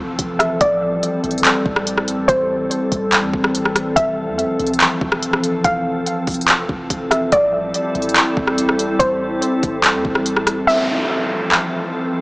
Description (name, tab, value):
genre	hip hop, atmospheric cloud-rap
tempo	143 BPM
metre	4/4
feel	half-time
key	F major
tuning	A4 = 438 Hz
part	glassy FM pad	sustained chords	0.0-12.2 s	E3 to A4	-20 LUFS	equal	ensemble chorus, built-in reverb, sidechain pumping
part	clean 808-style bass	bass	0.0-10.7 s	F1 to F2	-33 LUFS	equal	none
part	smooth R&B drum kit	drums	0.2-11.6 s	handclaps, hi-hat, kick drum, rim click	-18 LUFS	equal	none
part	soft round pluck	melody	0.4-11.1 s	C5 to F5	-20 LUFS	equal	chorus, low-pass filter, tape echo
part	downlifter	sound effects	10.7-12.2 s	none	-23 LUFS	equal	none
room	moderate huge ambient reverb, RT60 4.6 s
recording	small speaker sound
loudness	-15 LUFS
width	side -24 dB against mid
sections	0.0-10.7 A section; 10.7-12.2 B section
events	none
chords	0.0 Fmaj7; 0.6 Am7; 4.0 Fmaj7; 7.3 Am7; 10.7 Fmaj7